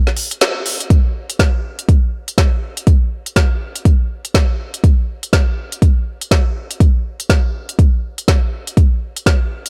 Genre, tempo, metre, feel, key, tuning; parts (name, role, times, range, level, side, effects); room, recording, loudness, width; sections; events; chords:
house; 122 BPM; 4/4; swing 60% on 16ths
deep house drum kit; drums; 0.1-9.7 s; hi-hat, snare drum; -22 LUFS; equal
electronic kick drum; drums; 0.9-9.4 s; -15 LUFS; equal
little or no reverb; -16 LUFS; mono
0.9-9.7 A section
kick drops out 0.4-0.9; band accent 0.4